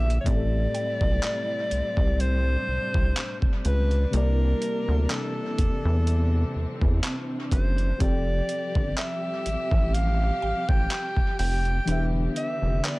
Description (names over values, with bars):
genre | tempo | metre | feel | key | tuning
contemporary R&B | 62 BPM | 4/4 | swing 54% on 16ths | A minor | A4 = 440 Hz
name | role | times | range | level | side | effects
breathy alto saxophone | melody | 0.0-13.0 s | A4 to G5 | -30 LUFS | equal | dub echo
muted felt-like synth keys | accompaniment | 0.0-13.0 s | A2 to G5 | -33 LUFS | left 3 dB | chorus
warm studio string section | sustained chords | 0.0-13.0 s | C3 to G4 | -34 LUFS | equal | none
rubbery square bass | bass | 0.0-12.8 s | E1 to E2 | -24 LUFS | equal | none
mallet-like synth pluck | texture | 0.0-12.3 s | G5 to E6 | -45 LUFS | right 5 dB | none
dusty soul sampler-style drum kit | drums | 0.1-13.0 s | handclaps, hi-hat, kick drum | -26 LUFS | equal | overdrive
room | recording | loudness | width
little or no reverb | echo-heavy mix | -22 LUFS | side -22 dB against mid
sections
0.3-13.0 A section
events
none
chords
0.3 Am9; 4.1 C13; 8.0 Fmaj9; 11.9 Em7